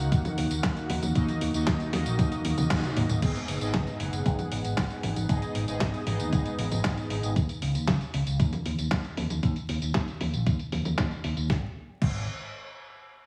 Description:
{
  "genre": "italo disco",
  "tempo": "116 BPM",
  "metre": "4/4",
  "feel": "straight",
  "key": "G# minor",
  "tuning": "A4 = 441 Hz",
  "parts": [
    { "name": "analog synth brass", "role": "stabs", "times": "0.0-7.3 s", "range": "G#2 to F#5", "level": "-34 LUFS", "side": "equal", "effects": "chorus, cassette tape, digital delay" },
    { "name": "fingered electric bass with an envelope filter", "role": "bass", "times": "0.0-12.3 s", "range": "F#1 to D#2", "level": "-32 LUFS", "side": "equal", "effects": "digital delay" },
    { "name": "clean 12-bit digital drum machine", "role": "drums", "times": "0.1-12.1 s", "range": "congas, crash cymbal, handclaps, hi-hat, snare drum, tambourine, toms", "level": "-34 LUFS", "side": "equal", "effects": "low-pass filter on hats, low-pass filter on perc, low-pass filter on snare, low-pass filter on toms, low-pass filter on cymbals, low-pass filter on room" },
    { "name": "electronic kick drum", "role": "drums", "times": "0.1-12.1 s", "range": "none", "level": "-31 LUFS", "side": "equal", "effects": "none" }
  ],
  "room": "light reverb",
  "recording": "heavily compressed radio sound, vinyl crackle, small room reverb",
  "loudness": "-28 LUFS",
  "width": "mono",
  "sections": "0.0-3.2 A section; 3.2-11.5 B section; 11.5-13.3 C section",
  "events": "drum fill 2.2-3.2; band accent 2.7",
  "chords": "0.0 D#m; 3.2 G#m; 7.4 D#5; 11.5 N.C."
}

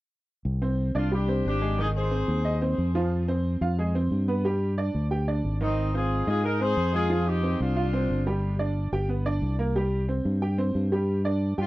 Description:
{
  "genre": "latin, salsa",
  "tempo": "181 BPM",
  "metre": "4/4",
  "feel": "straight",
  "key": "C minor",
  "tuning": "A4 = 440 Hz",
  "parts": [
    { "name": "fingered electric bass", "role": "bass", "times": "0.5-11.7 s", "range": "G1 to Ab2", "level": "-26 LUFS", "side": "equal", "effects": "none" },
    { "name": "clear upright piano", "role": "accompaniment", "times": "0.6-11.7 s", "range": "Eb3 to G5", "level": "-29 LUFS", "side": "right 2 dB", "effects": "none" },
    { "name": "mellow horn section", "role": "melody", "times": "1.0-2.6, 5.6-8.2, 11.6-11.7 s", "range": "C4 to C5", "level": "-29 LUFS", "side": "left 2 dB", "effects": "tape echo" }
  ],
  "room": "little or no reverb",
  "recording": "dry, close 1970s-style studio recording",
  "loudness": "-24 LUFS",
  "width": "side -17 dB against mid",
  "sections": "0.5-11.7 A section",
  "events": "none",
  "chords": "0.5 Csus2; 1.8 Ab; 3.1 Fmadd9; 4.4 G5; 5.8 Ab; 7.1 F5; 8.4 G5; 9.1 G; 9.8 C5; 11.1 G5"
}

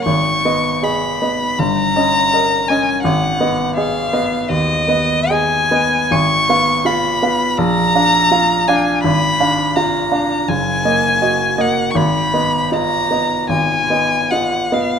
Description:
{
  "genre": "classical, romantic duo for violin and grand piano",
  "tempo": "81 BPM",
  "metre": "4/4",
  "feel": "uneven beats, rubato",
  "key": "unclear",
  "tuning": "A4 = 438 Hz",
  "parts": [
    { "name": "rich violin", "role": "melody", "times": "0.0-15.0 s", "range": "D#5 to C#6", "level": "-16 LUFS", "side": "left 1 dB", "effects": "none" },
    { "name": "clear baby grand piano", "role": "accompaniment", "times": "0.0-15.0 s", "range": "Gb1 to F5", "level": "-17 LUFS", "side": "right 1 dB", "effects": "none" }
  ],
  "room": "moderate scoring stage reverb, RT60 1.7 s",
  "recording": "close, detailed microphones",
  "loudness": "-13 LUFS",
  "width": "side -7 dB against mid",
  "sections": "0.0-15.0 A section",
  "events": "none",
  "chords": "0.1 G#m; 1.6 D#7/G; 3.0 G#m7; 6.1 Fdim/Ab; 7.6 Bb; 9.0 Bb7/Ab; 10.5 Ebm/Gb; 12.0 Fm7b5/Ab"
}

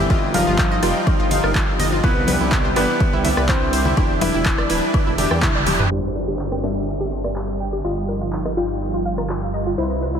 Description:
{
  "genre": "progressive house",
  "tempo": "124 BPM",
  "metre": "4/4",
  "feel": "straight",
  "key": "unclear",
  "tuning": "A4 = 440 Hz",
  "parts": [
    { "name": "bright concert grand piano", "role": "melody", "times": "0.0-5.8 s", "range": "E3 to E5", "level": "-24 LUFS", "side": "left 1 dB", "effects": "sidechain pumping, diffuse ambient delay" },
    { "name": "lush unison pad", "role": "sustained chords", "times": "0.0-10.2 s", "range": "C3 to G4", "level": "-26 LUFS", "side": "right 1 dB", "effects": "chorus, sidechain pumping" },
    { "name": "analog pluck", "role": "arpeggios", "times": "0.0-10.2 s", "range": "E4 to C6", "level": "-26 LUFS", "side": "right 1 dB", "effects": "chorus, sidechain pumping, diffuse ambient delay" },
    { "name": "supersaw stab", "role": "stabs", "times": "0.0-10.2 s", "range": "E3 to G5", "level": "-27 LUFS", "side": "left 1 dB", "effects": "sidechain pumping, low-pass filter, diffuse ambient delay" },
    { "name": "dark detuned saw bass", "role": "bass", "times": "0.0-10.2 s", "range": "D1 to E2", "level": "-25 LUFS", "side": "equal", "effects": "sidechain pumping" },
    { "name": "deep house drum kit", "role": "drums", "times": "0.1-9.4 s", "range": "crash cymbal, handclaps, hi-hat, ride cymbal, rim click, toms", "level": "-26 LUFS", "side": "equal", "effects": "low-pass filter on hats, low-pass filter on snare, low-pass filter on cymbals, low-pass filter on toms, low-pass filter on room" },
    { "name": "electronic kick drum", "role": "drums", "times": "0.1-5.5 s", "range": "none", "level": "-20 LUFS", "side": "equal", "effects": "none" },
    { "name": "woodblock and congas", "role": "percussion", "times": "0.1-5.8 s", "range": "none", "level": "-29 LUFS", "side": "left 4 dB", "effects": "sidechain pumping on perc" },
    { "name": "downlifter", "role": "sound effects", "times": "6.0-9.8 s", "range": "none", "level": "-33 LUFS", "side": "left 1 dB", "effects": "none" }
  ],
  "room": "moderate huge ambient reverb, RT60 4.1 s",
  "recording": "dreamy mix soaked in reverb, low-pass filter",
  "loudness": "-17 LUFS",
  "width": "side -8 dB against mid",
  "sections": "0.0-5.9 A section; 5.9-10.2 B section",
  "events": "drop 0.0-5.9; drum fill 5.4-5.9; band accent 5.4; filter sweep on drum 5.9-10.2; filter sweep on synth arpeggio sound 5.9-10.2; filter sweep on supersaw synth 5.9-10.2; filter sweep on analog synth pad 5.9-10.2; filter sweep 5.9-10.2",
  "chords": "0.1 Ebadd9; 2.0 Cmaj7; 4.0 Em7; 5.9 Gsus4; 7.8 Ebadd9/G"
}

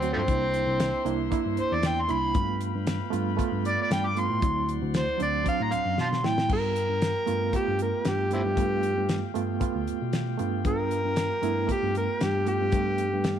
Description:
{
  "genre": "straight-eighth soul blues",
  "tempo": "116 BPM",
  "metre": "4/4",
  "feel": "swing 54% on 16ths",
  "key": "G mixolydian",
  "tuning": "A4 = 439 Hz",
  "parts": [
    { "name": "overdriven harmonica", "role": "melody", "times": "0.0-13.4 s", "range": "F3 to D6", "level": "-27 LUFS", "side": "equal", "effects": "none" },
    { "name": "bright reed electric piano", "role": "accompaniment", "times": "0.0-13.4 s", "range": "F#3 to G4", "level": "-31 LUFS", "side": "right 11 dB", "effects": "overdrive, fast tremolo" },
    { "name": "clear horn section", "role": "sustained chords", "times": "0.0-13.4 s", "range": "G4 to C6", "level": "-40 LUFS", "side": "left 12 dB", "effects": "none" },
    { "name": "bright tine electric piano", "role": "bass", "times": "0.0-13.4 s", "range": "C2 to B2", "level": "-30 LUFS", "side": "left 2 dB", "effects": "lush chorus" },
    { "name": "damped 70s drum kit", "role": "drums", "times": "0.0-13.4 s", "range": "crash cymbal, hi-hat, kick drum, snare drum", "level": "-30 LUFS", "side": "left 2 dB", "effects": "none" }
  ],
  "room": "light reverb, studio reverb",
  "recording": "1960s-style stereo with parts hard left and right",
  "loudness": "-24 LUFS",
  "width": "side -9 dB against mid",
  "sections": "0.0-6.5 A section; 6.5-13.4 B section",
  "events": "harmonica solo 0.0-6.5; drum fill 6.0-6.5",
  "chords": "0.3 C7; 2.4 G7; 4.4 D7; 6.5 G7"
}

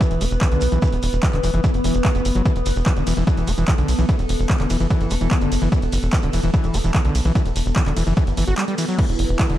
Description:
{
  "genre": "psychedelic trance",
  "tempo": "147 BPM",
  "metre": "4/4",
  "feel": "straight",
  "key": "unclear",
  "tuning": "A4 = 439 Hz",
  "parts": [
    { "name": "evolving wavetable pad", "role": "sustained chords", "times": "0.0-9.0 s", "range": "B3 to B4", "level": "-26 LUFS", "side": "left 2 dB", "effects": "chorus, built-in reverb, phaser, sidechain pumping" },
    { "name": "overdriven acid bass", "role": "riff", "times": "0.0-9.6 s", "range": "D3 to F#4", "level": "-26 LUFS", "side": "equal", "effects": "distortion, auto-pan, vintage 12-bit sampler grit, sidechain pumping, digital delay" },
    { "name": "electronic kick drum", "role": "drums", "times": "0.0-9.5 s", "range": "none", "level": "-19 LUFS", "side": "equal", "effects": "overdrive" },
    { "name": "techno drum kit", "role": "drums", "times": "0.0-9.6 s", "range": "crash cymbal, handclaps, hi-hat, ride cymbal", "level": "-29 LUFS", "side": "equal", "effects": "overdrive" },
    { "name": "shekere", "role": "percussion", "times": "0.0-9.0 s", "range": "none", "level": "-37 LUFS", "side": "right 4 dB", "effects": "none" },
    { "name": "tight sequencer bass", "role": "bass", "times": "0.1-9.6 s", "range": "E1 to B1", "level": "-21 LUFS", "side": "equal", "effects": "tube saturation" },
    { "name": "airy breathy pad", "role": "texture", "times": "9.1-9.6 s", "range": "E4 to B4", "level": "-26 LUFS", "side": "right 3 dB", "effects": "chorus, sidechain pumping" }
  ],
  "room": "digital ambience",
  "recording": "dark, warm production",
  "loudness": "-17 LUFS",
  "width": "side -13 dB against mid",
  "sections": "0.0-9.0 A section",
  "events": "drop 0.0-9.0; break 8.6-9.0",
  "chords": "0.0 E5"
}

